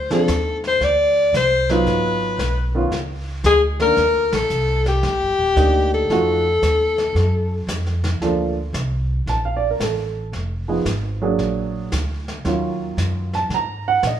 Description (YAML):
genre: jazz, small-group swing and bop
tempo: 113 BPM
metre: 4/4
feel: swing 68% on 8ths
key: unclear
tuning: A4 = 436 Hz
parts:
  - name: breathy alto saxophone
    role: melody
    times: 0.0-7.7 s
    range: G4 to D5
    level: -18 LUFS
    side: left 3 dB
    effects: none
  - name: upright bass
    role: bass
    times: 0.0-14.2 s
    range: Eb1 to Bb2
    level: -23 LUFS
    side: equal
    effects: none
  - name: warm baby grand piano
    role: accompaniment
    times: 0.1-14.2 s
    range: Eb3 to Bb5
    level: -21 LUFS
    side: right 3 dB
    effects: none
  - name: vintage brush drum kit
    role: drums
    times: 0.1-14.2 s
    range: brushed snare drum, hi-hat, ride cymbal, snare drum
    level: -30 LUFS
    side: equal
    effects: none
room: moderate large studio reverb, RT60 1.0 s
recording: band playing live in one room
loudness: -17 LUFS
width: side -10 dB against mid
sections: 0.0-8.2 A section; 8.2-14.2 B section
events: band accent 4.2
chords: 0.0 Dm7; 1.9 Abm7; 2.9 Dbsus2; 4.0 Ebmaj7; 6.1 F7b9; 8.2 Bbmaj7; 10.3 Fm7b5; 11.4 Bb7b13; 12.4 Ebm9